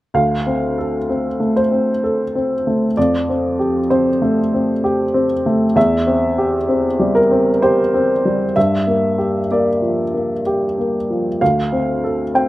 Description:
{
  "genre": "classical",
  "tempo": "64 BPM",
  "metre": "3/4",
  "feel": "rubato",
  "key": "unclear",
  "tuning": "A4 = 441 Hz",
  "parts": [
    { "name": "warm upright piano", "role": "accompaniment", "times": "0.1-12.5 s", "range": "D2 to G5", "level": "-15 LUFS", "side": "equal", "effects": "none" }
  ],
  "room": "light reverb",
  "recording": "recorded outdoors, with no room sound",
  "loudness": "-15 LUFS",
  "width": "side -16 dB against mid",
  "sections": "0.1-12.5 A section",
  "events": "none",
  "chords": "0.1 Dm7; 3.0 Fadd9; 5.8 C/E; 8.6 Gm7; 11.4 Dm7",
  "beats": "| 0.14 1.08 2.03 | 2.96 3.90 4.83 | 5.76 6.68 7.62 | 8.56 9.51 10.46 | 11.41 12.34"
}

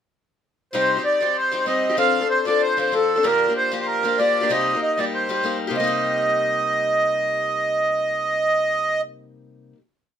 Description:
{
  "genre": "celtic folk, Celtic reel",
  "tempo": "192 BPM",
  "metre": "4/4",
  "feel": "swing 53% on 8ths",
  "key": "C dorian",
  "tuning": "A4 = 440 Hz",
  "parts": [
    { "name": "accordion", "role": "melody", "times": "0.7-9.0 s", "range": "A4 to F5", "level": "-19 LUFS", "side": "right 2 dB", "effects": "none" },
    { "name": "picked acoustic archtop guitar", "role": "accompaniment", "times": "0.7-9.8 s", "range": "Bb2 to A4", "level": "-25 LUFS", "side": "left 5 dB", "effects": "none" }
  ],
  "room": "light reverb",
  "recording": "minimal, uncompressed stereo recording",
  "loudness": "-18 LUFS",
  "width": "side -8 dB against mid",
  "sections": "0.7-5.8 A section; 5.8-8.2 final chord",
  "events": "none",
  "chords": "0.7 Cm; 2.0 F6; 3.2 Bb6; 4.5 Cm7",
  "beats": "| 0.73 1.05 1.36 1.67 | 1.99 2.30 2.62 2.93 | 3.24 3.56 3.87 4.18 | 4.50 4.81 5.13 5.44 | 5.75 6.07 6.38 6.69 | 7.00 7.31 7.62 7.93"
}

